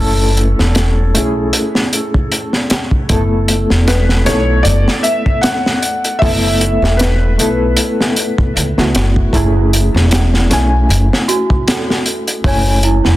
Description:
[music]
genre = trip hop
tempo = 77 BPM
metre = 4/4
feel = swing 56% on 16ths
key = F# minor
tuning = A4 = 440 Hz
[part]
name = felt-muted upright piano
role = melody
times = 0.0-8.9 s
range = A4 to F#5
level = -20 LUFS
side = left 1 dB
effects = dub echo
[part]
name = barky reed electric piano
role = accompaniment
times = 0.0-13.2 s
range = A3 to G#5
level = -18 LUFS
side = left 1 dB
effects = fast tremolo, harmonic tremolo, vintage 12-bit sampler grit, low-pass filter, tape echo
[part]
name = upright bass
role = bass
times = 0.0-13.2 s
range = E1 to C#2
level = -14 LUFS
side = equal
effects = tube saturation
[part]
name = crunchy breakbeat drum kit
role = drums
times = 0.4-13.2 s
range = hi-hat, kick drum, snare drum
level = -15 LUFS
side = equal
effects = soft clipping on snare
[part]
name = celesta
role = arpeggios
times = 9.3-13.2 s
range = E4 to C#5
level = -20 LUFS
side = right 4 dB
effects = ping-pong delay
[sound]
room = studio ambience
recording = dense, heavily limited modern master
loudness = -11 LUFS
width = side -16 dB against mid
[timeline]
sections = 0.0-13.2 A section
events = none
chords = 0.0 F#m9; 3.1 Asus2; 9.3 F#m9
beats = 0.76 1.54 2.32 | 3.10 3.88 4.66 5.43 | 6.21 6.99 7.77 8.55 | 9.33 10.11 10.89 11.67 | 12.45

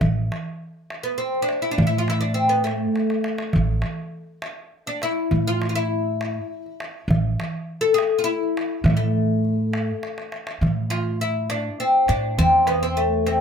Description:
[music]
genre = Arabic maqam ensemble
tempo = 68 BPM (dotted quarters)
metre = 6/8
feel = straight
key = A minor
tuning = A4 = 440 Hz
[part]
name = oud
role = melody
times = 0.0-13.4 s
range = A3 to A4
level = -21 LUFS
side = left 2 dB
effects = none
[part]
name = upright bass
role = bass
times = 0.0-13.4 s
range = A1 to A2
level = -24 LUFS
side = equal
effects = none
[part]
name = darbuka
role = percussion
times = 0.0-13.4 s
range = none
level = -26 LUFS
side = right 1 dB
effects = none
[sound]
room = light reverb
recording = close, detailed microphones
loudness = -20 LUFS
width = side -7 dB against mid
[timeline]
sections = 0.0-10.6 A section; 10.6-13.4 B section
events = drum fill 3.0-3.5, 10.0-10.6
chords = none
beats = | 0.01 0.90 | 1.78 2.66 | 3.55 4.43 | 5.31 6.20 | 7.08 7.96 | 8.85 9.73 | 10.62 11.50 | 12.38 13.27

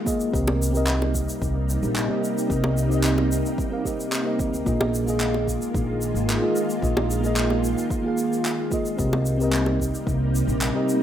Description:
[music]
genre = sunset chillout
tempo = 111 BPM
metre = 4/4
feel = straight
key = C minor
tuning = A4 = 444 Hz
[part]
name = mellow FM electric piano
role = accompaniment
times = 0.0-11.0 s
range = Bb3 to F5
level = -26 LUFS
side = equal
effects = chorus, auto-pan, cassette tape, tape echo
[part]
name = soft string machine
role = sustained chords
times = 0.0-11.0 s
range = C3 to F4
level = -27 LUFS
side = equal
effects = ensemble chorus
[part]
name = electronic kick drum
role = drums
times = 0.1-10.2 s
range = none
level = -29 LUFS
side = equal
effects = overdrive
[part]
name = shaker and handclaps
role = drums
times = 0.1-11.0 s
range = none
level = -31 LUFS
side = equal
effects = none
[part]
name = upright bass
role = bass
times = 0.3-10.7 s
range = Ab1 to D2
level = -25 LUFS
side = equal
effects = none
[part]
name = bongos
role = percussion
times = 0.5-9.8 s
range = none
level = -27 LUFS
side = equal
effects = none
[sound]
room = moderate digital room reverb, RT60 1.1 s, small room ambience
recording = rough home demo mix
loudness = -21 LUFS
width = side -10 dB against mid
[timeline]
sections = 0.0-11.0 A section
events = none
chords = 0.3 Cm7; 4.7 Bb7sus4; 9.0 Cm7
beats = | 0.34 0.88 1.42 1.96 | 2.50 3.04 3.58 4.12 | 4.66 5.20 5.74 6.28 | 6.83 7.37 7.91 8.45 | 8.99 9.53 10.07 10.61

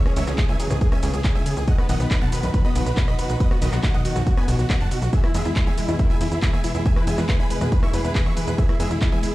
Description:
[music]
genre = uplifting trance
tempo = 139 BPM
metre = 4/4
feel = straight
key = E major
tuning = A4 = 440 Hz
[part]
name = warm symphonic string section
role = sustained chords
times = 0.0-9.3 s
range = B2 to G#4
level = -30 LUFS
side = right 1 dB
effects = sidechain pumping
[part]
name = wide unison pluck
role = arpeggios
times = 0.0-9.3 s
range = F#2 to E4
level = -29 LUFS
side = left 2 dB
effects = sidechain pumping, tape echo
[part]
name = big supersaw lead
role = melody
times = 0.1-9.3 s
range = E4 to C#6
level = -30 LUFS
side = right 1 dB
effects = sidechain pumping, tape echo
[part]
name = punchy analog drum machine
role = drums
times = 0.1-9.3 s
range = handclaps, hi-hat, ride cymbal, rim click, shaker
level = -32 LUFS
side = right 1 dB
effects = sidechain pumping on hats, sidechain pumping on perc, sidechain pumping on cymbals
[part]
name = tight sequencer bass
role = bass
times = 0.2-9.2 s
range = F#1 to E2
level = -24 LUFS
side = equal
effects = sidechain pumping
[part]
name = electronic kick drum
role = drums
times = 0.4-9.1 s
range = none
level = -20 LUFS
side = equal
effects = none
[sound]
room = little or no reverb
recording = played on a big sound system in a bare room, large studio reverb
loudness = -18 LUFS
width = side -17 dB against mid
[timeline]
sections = 0.0-9.3 A section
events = none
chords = 0.0 C#m7; 1.7 B; 5.1 E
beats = 0.38 0.81 1.25 | 1.68 2.11 2.54 2.97 | 3.40 3.83 4.27 4.70 | 5.13 5.56 5.99 6.42 | 6.86 7.29 7.72 8.15 | 8.58 9.01

